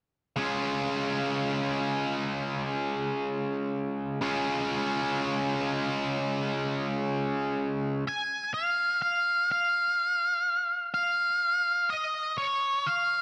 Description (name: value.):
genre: rock.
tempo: 62 BPM.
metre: 4/4.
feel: straight.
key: unclear.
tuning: A4 = 440 Hz.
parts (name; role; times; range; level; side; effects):
tight distorted guitar; riff; 0.4-8.0 s; C#3 to E#4; -30 LUFS; equal; distortion.
octave-fuzz lead guitar; melody; 8.1-13.2 s; C#5 to G#5; -27 LUFS; equal; distortion, tape echo.
room: moderate concert hall reverb, RT60 1.9 s, digital ambience.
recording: none.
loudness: -29 LUFS.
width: mono.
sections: 0.4-8.1 A section; 8.1-13.2 B section.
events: none.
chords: 0.4 C#; 8.1 N.C..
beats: | 0.38 1.34 2.30 3.26 | 4.22 5.19 6.15 7.11 | 8.07 9.03 9.99 10.95 | 11.91 12.87.